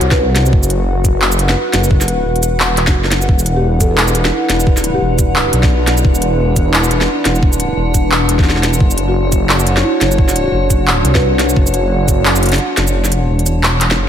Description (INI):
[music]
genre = half-time drum and bass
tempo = 174 BPM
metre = 4/4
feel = swing 59% on 16ths, half-time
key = unclear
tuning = A4 = 436 Hz
[part]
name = dark analog pad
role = sustained chords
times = 0.0-14.1 s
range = E4 to F#5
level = -19 LUFS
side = equal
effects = chorus, sidechain pumping
[part]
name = dark detuned saw bass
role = bass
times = 0.0-14.1 s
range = E1 to C2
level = -15 LUFS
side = equal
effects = none
[part]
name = organic electronic drum kit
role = drums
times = 0.0-14.0 s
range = handclaps, hi-hat, shaker, snare drum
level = -16 LUFS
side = equal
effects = none
[part]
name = buzzing marimba with soft mallets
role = melody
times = 0.1-0.2, 3.6-5.2, 9.1-11.3 s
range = E4 to B4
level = -23 LUFS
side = left 1 dB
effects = ping-pong delay
[part]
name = electronic kick drum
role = drums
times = 0.1-12.2 s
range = none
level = -13 LUFS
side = equal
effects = none
[part]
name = metallic inharmonic drone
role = texture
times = 3.6-14.1 s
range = D4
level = -22 LUFS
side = left 1 dB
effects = chorus, built-in reverb
[sound]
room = light reverb, digital ambience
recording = none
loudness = -11 LUFS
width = side -9 dB against mid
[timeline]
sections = 0.0-14.1 A section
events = kick drops out 12.9-14.1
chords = 0.0 F#5; 3.3 E5; 8.8 F#5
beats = 0.19 | 0.53 0.88 1.22 1.56 | 1.91 2.25 2.60 2.94 | 3.29 3.63 3.98 4.32 | 4.67 5.01 5.36 5.70 | 6.05 6.39 6.74 7.08 | 7.43 7.77 8.12 8.46 | 8.81 9.15 9.50 9.84 | 10.19 10.53 10.88 11.22 | 11.56 11.91 12.26 12.60 | 12.94 13.29 13.63 13.98